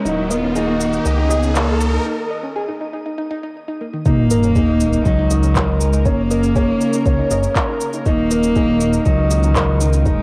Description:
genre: piano and strings electronica.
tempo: 120 BPM.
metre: 4/4.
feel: straight.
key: Eb minor.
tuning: A4 = 440 Hz.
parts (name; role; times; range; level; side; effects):
dark cello; melody; 0.0-10.2 s; Eb3 to Db4; -23 LUFS; equal; cassette tape, shimmer reverb.
lush unison pad; sustained chords; 0.0-10.2 s; Db3 to Gb5; -31 LUFS; equal; chorus, sidechain pumping, cassette tape, shimmer reverb.
dark upright piano; riff; 0.0-10.2 s; Db4 to Eb5; -24 LUFS; equal; cassette tape, shimmer reverb.
riser and sub drop; sound effects; 0.0-6.1 s; none; -26 LUFS; equal; none.
soft round pluck; arpeggios; 0.1-10.1 s; Eb3 to Eb5; -31 LUFS; equal; chorus, sidechain pumping, cassette tape, tape echo, shimmer reverb.
dark detuned saw bass; bass; 0.1-10.2 s; Eb1 to Db2; -21 LUFS; equal; sidechain pumping.
electronic shaker and handclaps; drums; 0.1-10.2 s; none; -28 LUFS; equal; overdrive, cassette tape.
electronic kick drum; drums; 4.1-10.2 s; none; -22 LUFS; equal; overdrive, cassette tape.
room: moderate spring reverb, RT60 1.9 s.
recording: home recording on cassette.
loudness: -17 LUFS.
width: mono.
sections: 0.0-4.1 A section; 4.1-10.2 B section.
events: build-up 0.0-4.1; riser 0.0-2.1; break 2.1-4.1; drop 4.1-10.2; impact 4.1-6.1.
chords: 0.1 Ebm; 2.1 Eb7(no3); 6.1 Gb; 8.1 Ebm.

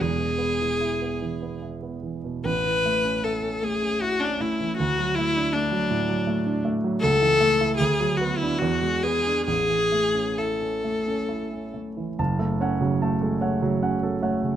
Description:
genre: classical, romantic duo for viola and grand piano.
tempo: 65-83 BPM.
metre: 3/4.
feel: rubato.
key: A major.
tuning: A4 = 440 Hz.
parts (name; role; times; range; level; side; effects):
rich viola; melody; 0.0-11.7 s; D4 to B4; -23 LUFS; left 3 dB; none.
dark grand piano; accompaniment; 0.0-14.6 s; E1 to A5; -25 LUFS; right 3 dB; none.
room: moderate recital hall reverb, RT60 1.4 s.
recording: close, detailed microphones.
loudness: -22 LUFS.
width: side -10 dB against mid.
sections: 0.0-12.2 A section; 12.2-14.6 B section.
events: none.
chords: 0.0 E; 2.5 A; 4.8 D; 7.0 A/C#; 7.8 Bm/D; 8.6 E9; 9.5 A; 12.2 F#m.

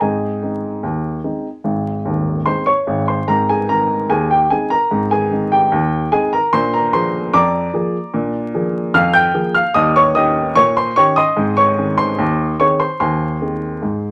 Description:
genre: ragtime piano.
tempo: 74 BPM.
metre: 2/4.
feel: straight.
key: Ab major.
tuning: A4 = 440 Hz.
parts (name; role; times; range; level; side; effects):
warm upright piano; solo; 0.0-14.1 s; Eb1 to G6; -16 LUFS; equal; none.
room: wet studio reverb, RT60 0.5 s.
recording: vinyl crackle.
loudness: -17 LUFS.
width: mono.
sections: 0.0-3.3 A section; 3.3-14.1 A section.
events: none.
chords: 0.0 Ab; 6.5 Bb7; 9.7 Eb7; 11.4 Ab; 13.0 Ab/Eb.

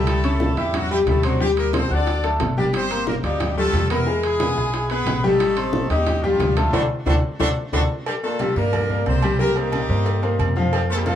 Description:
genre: latin, salsa.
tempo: 180 BPM.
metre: 4/4.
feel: straight.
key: G minor.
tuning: A4 = 444 Hz.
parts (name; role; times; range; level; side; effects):
clear horn section; melody; 0.0-11.2 s; F3 to D5; -25 LUFS; equal; tape echo.
bright upright piano; accompaniment; 0.0-11.2 s; F3 to G#6; -22 LUFS; left 3 dB; none.
upright bass; bass; 0.0-11.2 s; G1 to G2; -23 LUFS; equal; none.
bongos and cowbell; percussion; 0.1-11.2 s; none; -31 LUFS; left 3 dB; none.
congas; percussion; 0.1-11.2 s; none; -28 LUFS; equal; none.
timbales and agogo bells; percussion; 0.1-11.2 s; none; -31 LUFS; right 7 dB; none.
room: moderate studio reverb, RT60 0.5 s.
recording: small room ambience.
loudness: -18 LUFS.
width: side -10 dB against mid.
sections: 0.0-8.1 A section; 8.1-11.2 B section.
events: band accent 6.7-8.1; drum fill 7.6-8.1.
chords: 0.1 A7/C#; 1.4 D7sus4; 2.1 D; 2.7 Gm7; 4.1 E; 5.4 Am7b5; 6.7 D7; 8.1 Gm7; 9.4 Cm7.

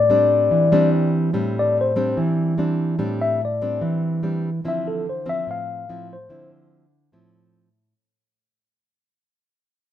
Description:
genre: bossa nova.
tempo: 145 BPM.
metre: 4/4.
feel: straight.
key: A minor.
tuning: A4 = 440 Hz.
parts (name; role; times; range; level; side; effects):
mellow tine electric piano; melody; 0.0-6.5 s; A4 to F5; -20 LUFS; left 4 dB; none.
nylon-string guitar; accompaniment; 0.0-7.9 s; A2 to E4; -21 LUFS; right 1 dB; none.
room: moderate echo chamber reverb, RT60 1.4 s.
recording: minimal, uncompressed stereo recording.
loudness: -18 LUFS.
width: side -11 dB against mid.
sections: 0.0-1.3 A section; 1.3-7.9 B section.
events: fade-out 1.3-7.9; tine electric piano solo 1.3-7.9.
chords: 0.0 Am7; 4.6 Dm9.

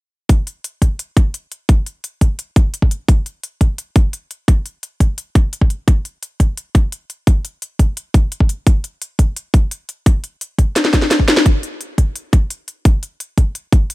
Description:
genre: drum and bass.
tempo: 172 BPM.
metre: 4/4.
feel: straight.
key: none.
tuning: none.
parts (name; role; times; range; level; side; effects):
drum and bass drum kit; drums; 0.3-13.9 s; hi-hat, snare drum; -19 LUFS; left 1 dB; none.
electronic kick drum; drums; 0.3-13.8 s; none; -12 LUFS; equal; none.
room: little or no reverb.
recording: none.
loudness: -14 LUFS.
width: side -20 dB against mid.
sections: 0.3-13.9 A section.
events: drum fill 10.8-11.5.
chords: none.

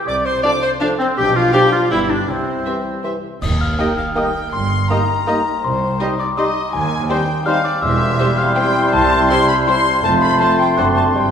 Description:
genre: cinematic, playful, whimsical film cue.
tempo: 163 BPM.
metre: 3/4.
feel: straight.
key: C major, Eb major from 3.4 s, C major from 7.8 s.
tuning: A4 = 440 Hz.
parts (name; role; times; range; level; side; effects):
warm oboe; second line; 0.0-11.3 s; C4 to Eb5; -24 LUFS; equal; none.
warm chamber violin section; second line; 0.1-11.3 s; C5 to D6; -24 LUFS; left 1 dB; none.
warm clarinet; second line; 0.1-11.3 s; C4 to D5; -22 LUFS; left 1 dB; none.
clear chamber double bass section; bass; 0.1-11.3 s; E1 to Eb2; -24 LUFS; right 2 dB; none.
warm chamber cello section; bass; 0.1-11.3 s; C2 to C3; -25 LUFS; right 3 dB; none.
warm chamber violin section; melody; 0.4-10.9 s; C5 to G5; -31 LUFS; left 3 dB; none.
silver concert flute; second line; 0.4-11.3 s; G5 to Eb6; -25 LUFS; left 2 dB; none.
mellow bassoon; accompaniment; 0.4-11.3 s; E3 to Bb3; -25 LUFS; right 1 dB; none.
warm chamber viola section; accompaniment; 0.4-10.9 s; G3 to A4; -27 LUFS; right 3 dB; none.
warm French horn section; sustained chords; 0.5-11.3 s; F3 to F4; -25 LUFS; left 2 dB; none.
glockenspiel with rubber mallets; melody; 3.4-11.3 s; G5 to F#6; -19 LUFS; left 3 dB; none.
clash cymbals and concert bass drum; percussion; 3.4-4.1 s; none; -26 LUFS; equal; none.
room: wet recital hall reverb, RT60 1.6 s.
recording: recorded in a church or concert hall.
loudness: -14 LUFS.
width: side -8 dB against mid.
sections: 0.0-3.4 A section; 3.4-11.3 B section.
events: band accent 3.4-3.8.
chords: 0.1 Dm7/C; 1.2 G7/B; 1.9 G; 2.3 C; 3.4 Eb; 4.5 Eb/G; 5.6 Cm; 6.7 Cm/Eb; 7.8 C/E; 8.9 C; 10.0 F; 10.8 D7/F#.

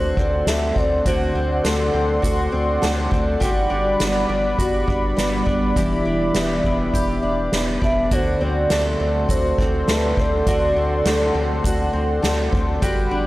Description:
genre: dream pop.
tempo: 102 BPM.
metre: 4/4.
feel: straight.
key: D mixolydian.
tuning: A4 = 441 Hz.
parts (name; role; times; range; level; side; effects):
hollow clarinet-like synth lead; melody; 0.0-3.1, 7.8-12.0 s; A4 to E5; -24 LUFS; right 1 dB; chorus, tape echo.
warm analog pad; sustained chords; 0.0-13.3 s; G3 to C6; -24 LUFS; right 1 dB; chorus.
fingerpicked twelve-string acoustic guitar; arpeggios; 0.0-13.3 s; D3 to G4; -23 LUFS; left 1 dB; lush chorus, tape echo.
round analog bass; bass; 0.0-13.3 s; E1 to D2; -25 LUFS; equal; none.
soft-mallet drum kit; drums; 0.2-13.0 s; hi-hat, kick drum, snare drum; -24 LUFS; equal; none.
room: light reverb.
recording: dry, gritty hardware recording.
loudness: -17 LUFS.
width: side -17 dB against mid.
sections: 0.0-13.3 A section.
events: none.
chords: 0.0 D7; 3.4 Gmaj7; 5.8 Em7; 8.1 D7.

